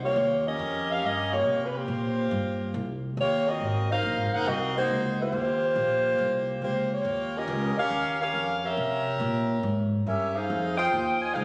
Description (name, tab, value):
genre	jazz, big band swing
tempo	139 BPM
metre	4/4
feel	swing 68% on 8ths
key	Eb major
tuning	A4 = 440 Hz
part	mellow saxophone section	melody	0.0-11.4 s	Bb3 to Ab5	-28 LUFS	equal	none
part	upright bass	bass	0.0-11.4 s	Gb1 to C3	-34 LUFS	equal	none
room	wet scoring stage reverb, RT60 1.8 s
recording	recorded on a phone in the room, studio reverb, compression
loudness	-27 LUFS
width	mono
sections	0.0-11.4 A section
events	none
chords	0.2 Eb13; 3.6 Ab13; 5.3 Eb13; 8.8 C7b9; 10.5 Fm7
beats	| 0.17 0.60 1.03 1.46 | 1.89 2.32 2.75 3.18 | 3.61 4.04 4.47 4.90 | 5.33 5.76 6.19 6.62 | 7.05 7.48 7.91 8.34 | 8.77 9.20 9.63 10.06 | 10.49 10.93 11.36